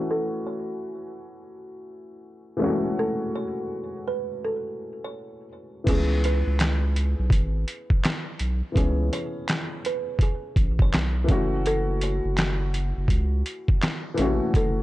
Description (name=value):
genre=lo-fi hip hop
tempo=83 BPM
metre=4/4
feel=swing 65% on 16ths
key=C# minor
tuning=A4 = 444 Hz
part: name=dark upright piano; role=accompaniment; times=0.0-14.8 s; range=E3 to G#4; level=-29 LUFS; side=left 2 dB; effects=cassette tape, low-pass filter
part: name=kalimba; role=melody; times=0.1-14.8 s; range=G#4 to C#5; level=-31 LUFS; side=right 2 dB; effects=low-pass filter, analog delay
part: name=saturated sub bass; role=bass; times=5.9-14.8 s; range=F#1 to C#2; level=-24 LUFS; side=equal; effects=none
part: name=boom bap sampler-style drum kit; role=drums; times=5.9-14.8 s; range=crash cymbal, handclaps, hi-hat, kick drum, snare drum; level=-23 LUFS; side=equal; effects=none
room=little or no reverb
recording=cassette tape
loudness=-22 LUFS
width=side -17 dB against mid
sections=0.0-5.9 A section; 5.9-14.8 B section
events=filter sweep 0.0-5.9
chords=0.0 F#m7; 5.9 C#m7; 11.3 F#m7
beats=| 0.09 0.81 1.53 2.25 | 2.98 3.70 4.42 5.14 | 5.87 6.59 7.31 8.04 | 8.76 9.48 10.21 10.93 | 11.65 12.37 13.10 13.82 | 14.54